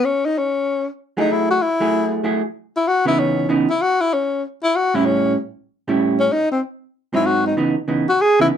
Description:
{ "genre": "jazz", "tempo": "191 BPM", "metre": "4/4", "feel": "swing 63% on 8ths", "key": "C# minor", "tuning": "A4 = 440 Hz", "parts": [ { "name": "breathy tenor saxophone", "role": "melody", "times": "0.0-8.5 s", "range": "B#3 to G#4", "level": "-17 LUFS", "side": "left 2 dB", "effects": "none" }, { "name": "vintage hollow-body jazz guitar", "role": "accompaniment", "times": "1.2-8.5 s", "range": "G#2 to G#4", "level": "-18 LUFS", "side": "right 3 dB", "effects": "none" } ], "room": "moderate small room reverb, RT60 0.5 s", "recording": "dark, warm production", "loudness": "-17 LUFS", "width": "side -8 dB against mid", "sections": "0.0-8.6 A section", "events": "none", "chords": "0.0 F#m9; 2.5 C#m9; 5.0 A7; 6.3 G#7; 7.6 C#m9" }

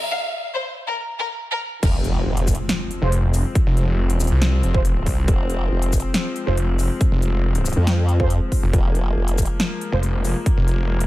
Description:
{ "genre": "heavy wobble dubstep", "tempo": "139 BPM", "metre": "4/4", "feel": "half-time", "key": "F minor", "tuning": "A4 = 440 Hz", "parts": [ { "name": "dark studio string section", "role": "sustained chords", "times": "0.0-11.1 s", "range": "F3 to C4", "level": "-29 LUFS", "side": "left 3 dB", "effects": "sidechain pumping" }, { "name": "riser and impact", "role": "sound effects", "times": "0.0-3.6 s", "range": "none", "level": "-29 LUFS", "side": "equal", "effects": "none" }, { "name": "warm chamber violin section", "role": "melody", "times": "0.1-1.6 s", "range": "Bb4 to F5", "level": "-26 LUFS", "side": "left 2 dB", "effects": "digital delay" }, { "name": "formant-sweep wobble bass", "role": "bass", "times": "1.8-2.6, 5.3-9.5 s", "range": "F1 to F2", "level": "-20 LUFS", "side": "equal", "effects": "chorus, overdrive" }, { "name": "big-room dance drum kit", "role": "drums", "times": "1.8-11.1 s", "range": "crash cymbal, hi-hat, shaker, snare drum", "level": "-26 LUFS", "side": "left 1 dB", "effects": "overdrive, high-pass filter on hats, small room ambience, high-pass filter on perc, high-pass filter on cymbals, high-pass filter on snare" }, { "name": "electronic kick drum", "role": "drums", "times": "1.8-10.6 s", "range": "none", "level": "-20 LUFS", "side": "equal", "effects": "overdrive, small room ambience" }, { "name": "mellow brass ensemble", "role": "stabs", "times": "3.0-10.0 s", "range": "Ab3 to C5", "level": "-29 LUFS", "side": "right 5 dB", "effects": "digital delay" }, { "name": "snarling distorted saw bass", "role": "bass", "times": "3.0-11.1 s", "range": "F1 to C2", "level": "-19 LUFS", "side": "equal", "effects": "distortion, overdrive" } ], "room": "little or no reverb", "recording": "high-pass filter", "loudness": "-18 LUFS", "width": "side -16 dB against mid", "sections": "0.0-1.8 A section; 1.8-11.1 B section", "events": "build-up 0.0-1.8; break 0.1-1.8; drop 1.8-11.1; impact 1.8-3.6", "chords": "0.0 N.C.; 1.8 Fm" }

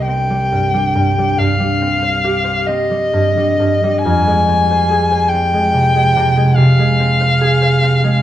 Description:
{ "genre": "classical, romantic duo for violin and harp", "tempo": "42-49 BPM (dotted quarters)", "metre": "12/8", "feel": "rubato", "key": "C minor", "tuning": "A4 = 440 Hz", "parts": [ { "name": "warm violin", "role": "melody", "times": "0.0-8.2 s", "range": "Eb5 to Ab5", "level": "-15 LUFS", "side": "left 2 dB", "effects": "none" }, { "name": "concert harp", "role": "accompaniment", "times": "0.0-8.2 s", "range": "C2 to C5", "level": "-14 LUFS", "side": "right 1 dB", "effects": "none" } ], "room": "moderate recital hall reverb, RT60 1.4 s", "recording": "dark, warm production", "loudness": "-12 LUFS", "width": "side -12 dB against mid", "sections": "0.0-8.2 A section", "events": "none", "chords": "0.0 Cm; 4.1 Fm" }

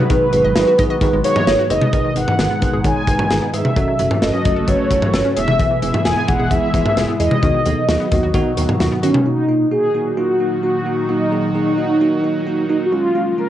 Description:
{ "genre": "synth-pop", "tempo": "131 BPM", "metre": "4/4", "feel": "straight", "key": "Eb minor from 9.3 s", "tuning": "A4 = 441 Hz", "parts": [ { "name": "mellow synth brass", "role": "melody", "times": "0.0-13.5 s", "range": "C#4 to G#5", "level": "-18 LUFS", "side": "equal", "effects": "chorus, analog delay, plate reverb" }, { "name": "bell-like tine electric piano", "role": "accompaniment", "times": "0.0-13.5 s", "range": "Ab3 to C#5", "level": "-23 LUFS", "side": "right 4 dB", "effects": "plate reverb" }, { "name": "phased analog pad", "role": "sustained chords", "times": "0.0-13.5 s", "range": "Bb2 to A4", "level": "-23 LUFS", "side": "left 1 dB", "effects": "phaser, chorus" }, { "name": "analog pluck", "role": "arpeggios", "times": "0.0-9.2 s", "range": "D#3 to D#5", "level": "-28 LUFS", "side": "left 3 dB", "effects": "chorus, analog delay, plate reverb" }, { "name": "chorused synth bass", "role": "bass", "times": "0.1-9.1 s", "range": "E1 to D#3", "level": "-23 LUFS", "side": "equal", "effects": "none" }, { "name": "modern studio drum kit", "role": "drums", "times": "0.1-9.3 s", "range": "cowbell, hi-hat, kick drum, snare drum, toms", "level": "-19 LUFS", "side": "left 1 dB", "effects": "none" } ], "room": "moderate studio reverb, RT60 0.5 s", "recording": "home recording on cassette, nothing above 10.6 kHz", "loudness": "-14 LUFS", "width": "side -12 dB against mid", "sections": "0.0-1.9 A section; 1.9-9.3 B section; 9.3-13.5 A section", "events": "none", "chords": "0.0 B6; 1.9 G#m; 3.8 F#m; 5.4 E; 7.4 B/D#; 9.3 Ebm; 12.9 Db6" }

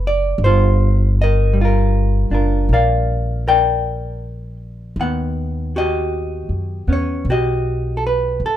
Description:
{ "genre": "jazz ballad", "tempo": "52 BPM", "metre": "4/4", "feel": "swing 67% on 8ths", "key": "unclear", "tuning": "A4 = 439 Hz", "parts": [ { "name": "vintage hollow-body jazz guitar", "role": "accompaniment", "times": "0.0-8.6 s", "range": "D3 to G5", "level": "-19 LUFS", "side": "equal", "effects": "none" }, { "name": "upright bass", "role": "bass", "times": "0.0-8.6 s", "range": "F#1 to F#2", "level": "-18 LUFS", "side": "equal", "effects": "none" } ], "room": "little or no reverb", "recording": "minimal, uncompressed stereo recording", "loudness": "-15 LUFS", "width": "side -11 dB against mid", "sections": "0.0-8.6 A section", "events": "none", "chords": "0.4 Gm7; 5.0 Eb7alt" }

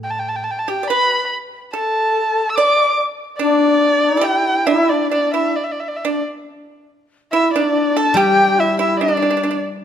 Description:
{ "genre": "chinese traditional, Chinese chamber ensemble", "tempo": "71 BPM", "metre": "2/4", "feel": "rubato", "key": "D zhi mode", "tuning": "A4 = 439 Hz", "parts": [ { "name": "dark erhu", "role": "melody", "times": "0.0-9.6 s", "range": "D5 to E6", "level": "-17 LUFS", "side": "right 1 dB", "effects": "none" }, { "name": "guzheng", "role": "accompaniment", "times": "0.0-0.5, 8.1-9.8 s", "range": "A2 to G3", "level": "-24 LUFS", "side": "left 3 dB", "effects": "none" }, { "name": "breathy reedy xiao", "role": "second line", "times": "0.7-9.6 s", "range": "D4 to D5", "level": "-20 LUFS", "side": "left 5 dB", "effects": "none" }, { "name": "pipa", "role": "second line", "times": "0.7-9.6 s", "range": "D4 to D5", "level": "-22 LUFS", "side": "right 6 dB", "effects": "none" } ], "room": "moderate recital hall reverb, RT60 1.7 s", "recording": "minimal, uncompressed stereo recording", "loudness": "-14 LUFS", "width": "side -9 dB against mid", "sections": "0.0-6.4 A section; 6.4-9.8 B section", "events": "none", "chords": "none" }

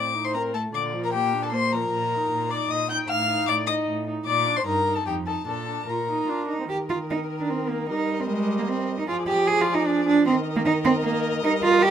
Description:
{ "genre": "quick classical-period movement for string quartet", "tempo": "152 BPM", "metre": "3/4", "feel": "straight", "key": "Bb major, Eb major from 6.7 s", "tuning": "A4 = 440 Hz", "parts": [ { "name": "warm violin", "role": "melody", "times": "0.0-11.9 s", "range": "Bb4 to G6", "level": "-28 LUFS", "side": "left 6 dB", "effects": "none" }, { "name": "dark violin", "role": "second line", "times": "0.0-11.9 s", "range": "G4 to G5", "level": "-29 LUFS", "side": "left 4 dB", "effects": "none" }, { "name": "dark viola", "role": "accompaniment", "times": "0.0-11.9 s", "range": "D3 to F4", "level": "-30 LUFS", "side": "right 2 dB", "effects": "none" }, { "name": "rich cello", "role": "bass", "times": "0.0-11.9 s", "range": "F2 to Ab4", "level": "-24 LUFS", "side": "right 3 dB", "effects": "none" } ], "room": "light reverb", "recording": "none", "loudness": "-22 LUFS", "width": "side -9 dB against mid", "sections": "0.0-6.7 A section; 6.7-11.9 B section", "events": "none", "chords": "0.0 F7/A (rootless); 0.7 Bb; 1.9 Eb5/Bb; 3.1 F7/A; 4.3 Bb; 4.7 Eb/G; 5.1 F7; 5.5 Bb; 6.7 Eb5; 7.9 Eb/G; 9.1 Ddim/F; 10.3 Eb5" }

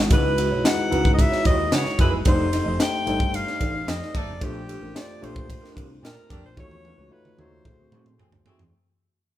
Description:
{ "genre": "polished 1980s jazz-funk pop", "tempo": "111 BPM", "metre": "4/4", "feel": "straight", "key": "unclear", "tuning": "A4 = 440 Hz", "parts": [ { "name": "tine electric piano", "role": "accompaniment", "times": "0.0-8.7 s", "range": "G#3 to C#5", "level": "-28 LUFS", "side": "left 2 dB", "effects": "none" }, { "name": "woody fretless electric bass", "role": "bass", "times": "0.0-8.7 s", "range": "F1 to C#3", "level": "-28 LUFS", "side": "equal", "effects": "none" }, { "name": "breathy alto saxophone", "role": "melody", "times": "0.1-8.2 s", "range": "G4 to G5", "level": "-28 LUFS", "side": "equal", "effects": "none" }, { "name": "mellow electric guitar", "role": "riff", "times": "0.1-8.7 s", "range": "C4 to Eb5", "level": "-31 LUFS", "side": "right 2 dB", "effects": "none" }, { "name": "crisp fusion drum kit", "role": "drums", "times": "0.1-8.7 s", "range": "hi-hat, kick drum, ride cymbal, snare drum, toms", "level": "-23 LUFS", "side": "equal", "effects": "none" }, { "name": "warm horn section", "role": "second line", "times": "1.7-8.6 s", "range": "G3 to A4", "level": "-36 LUFS", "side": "equal", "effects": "none" } ], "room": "light reverb", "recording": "band playing live in one room", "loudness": "-19 LUFS", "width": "side -13 dB against mid", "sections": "0.0-8.7 A section", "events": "fade-out 0.0-8.7; drum fill 6.6-8.7", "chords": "0.1 C#m11; 2.3 F13; 4.4 A#maj13; 6.6 D#m7b5; 7.6 D7#11" }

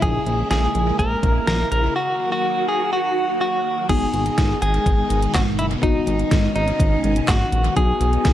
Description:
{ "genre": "synth-pop", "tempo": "124 BPM", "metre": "4/4", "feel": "straight", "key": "G# minor", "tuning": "A4 = 439 Hz", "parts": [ { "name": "direct-recorded clean electric guitar", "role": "melody", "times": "0.0-8.3 s", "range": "D#4 to A#4", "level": "-22 LUFS", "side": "equal", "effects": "tremolo, tape echo" }, { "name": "phased string machine", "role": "sustained chords", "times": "0.0-8.3 s", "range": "B2 to F#4", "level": "-26 LUFS", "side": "equal", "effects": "ensemble chorus, phaser" }, { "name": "chorused synth bass", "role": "bass", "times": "0.0-8.3 s", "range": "F#1 to B1", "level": "-22 LUFS", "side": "equal", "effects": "none" }, { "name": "pop drum kit", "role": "drums", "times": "0.0-8.3 s", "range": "crash cymbal, handclaps, hi-hat, kick drum, snare drum", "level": "-22 LUFS", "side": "equal", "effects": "overdrive, tape echo" }, { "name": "muted felt-like synth keys", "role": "accompaniment", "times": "3.9-8.3 s", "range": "B3 to G#4", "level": "-27 LUFS", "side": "left 7 dB", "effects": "chorus, tape echo" } ], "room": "light reverb, digital ambience", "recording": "echo-heavy mix", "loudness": "-17 LUFS", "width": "side -12 dB against mid", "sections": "0.0-3.9 A section; 3.9-8.3 B section", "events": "none", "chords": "0.0 A#m7b5; 2.0 D#m; 3.9 G#m; 7.8 Badd9" }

